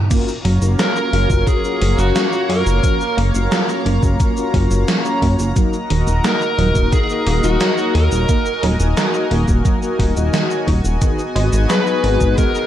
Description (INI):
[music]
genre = synthwave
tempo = 88 BPM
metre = 4/4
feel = straight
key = F# major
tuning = A4 = 441 Hz
[part]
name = analog pluck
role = arpeggios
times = 0.0-12.5 s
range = D#3 to F#4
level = -25 LUFS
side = right 4 dB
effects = chorus, digital delay
[part]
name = chorused pulse-width pad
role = sustained chords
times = 0.1-12.7 s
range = A#3 to A#5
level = -24 LUFS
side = equal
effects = sidechain pumping
[part]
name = mellow synth brass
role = stabs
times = 0.1-12.7 s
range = F#3 to D#5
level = -23 LUFS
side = left 3 dB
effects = chorus, vintage 12-bit sampler grit, digital delay
[part]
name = electronic kick drum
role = drums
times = 0.1-12.5 s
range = none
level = -17 LUFS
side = equal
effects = studio reverb
[part]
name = gated 80s digital drum machine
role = drums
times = 0.1-12.7 s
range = crash cymbal, hi-hat, shaker, snare drum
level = -23 LUFS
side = equal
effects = gated reverb, gated reverb snare, studio reverb
[part]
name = chorused synth bass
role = bass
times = 0.4-12.3 s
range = D#1 to F#2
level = -16 LUFS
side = equal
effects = tube saturation
[part]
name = high-gain lead guitar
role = melody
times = 0.8-12.7 s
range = F#4 to B4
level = -20 LUFS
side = equal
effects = distortion, digital delay
[sound]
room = light reverb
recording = dark, warm production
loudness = -14 LUFS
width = side -11 dB against mid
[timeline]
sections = 0.1-12.7 A section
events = none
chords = 0.1 F#maj7; 5.6 D#m; 11.0 G#m7